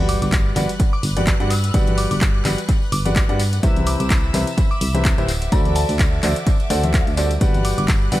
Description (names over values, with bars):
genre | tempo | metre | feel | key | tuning
piano house | 127 BPM | 4/4 | swing 56% on 16ths | G major | A4 = 440 Hz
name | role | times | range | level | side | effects
clear studio string section | sustained chords | 0.0-8.2 s | B4 to F#6 | -33 LUFS | equal | sidechain pumping
clear concert grand piano | riff | 0.0-8.2 s | C3 to F#5 | -24 LUFS | equal | sidechain pumping, analog delay
solid FM bass | bass | 0.0-8.2 s | D1 to G2 | -21 LUFS | equal | sidechain pumping
sub drop | sound effects | 0.0-1.7 s | none | -30 LUFS | equal | none
glassy synth bell | melody | 0.1-7.8 s | F#5 to E6 | -30 LUFS | equal | chorus, tremolo, analog delay
punchy analog drum machine | drums | 0.1-8.2 s | handclaps, hi-hat | -26 LUFS | equal | analog delay
tambourine and congas | percussion | 0.1-8.2 s | none | -29 LUFS | left 2 dB | analog delay
electronic kick drum | drums | 0.3-8.0 s | none | -18 LUFS | equal | none
room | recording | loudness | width
light reverb | echo-heavy mix | -16 LUFS | side -15 dB against mid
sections
0.0-8.2 A section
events
impact 0.0-1.7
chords
0.0 Gmaj7; 3.6 Cmaj7; 5.3 D7; 7.4 Gmaj7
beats
0.33 0.80 1.27 | 1.74 2.21 2.69 3.16 | 3.63 4.10 4.58 5.05 | 5.52 5.99 6.47 6.94 | 7.41 7.88